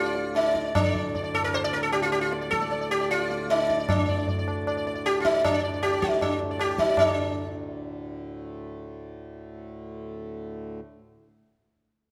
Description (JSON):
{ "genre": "indian classical, Hindustani", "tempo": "155 BPM", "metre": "4/4", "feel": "straight", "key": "D raga bhairavi", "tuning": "A4 = 437 Hz", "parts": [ { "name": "sitar", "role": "melody", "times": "0.0-8.5 s", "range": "D4 to D5", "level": "-27 LUFS", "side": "equal", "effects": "none" }, { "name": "pedal harmonium", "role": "drone", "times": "0.0-10.8 s", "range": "D2 to A2", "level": "-38 LUFS", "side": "equal", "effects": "none" }, { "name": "tabla", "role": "percussion", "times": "0.2-7.1 s", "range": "none", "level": "-32 LUFS", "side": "equal", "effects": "none" } ], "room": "wet recital hall reverb, RT60 1.6 s", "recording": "none", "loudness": "-26 LUFS", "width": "mono", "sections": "0.0-7.0 A section; 7.0-10.0 B section", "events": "speeding up 0.0-10.0", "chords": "none" }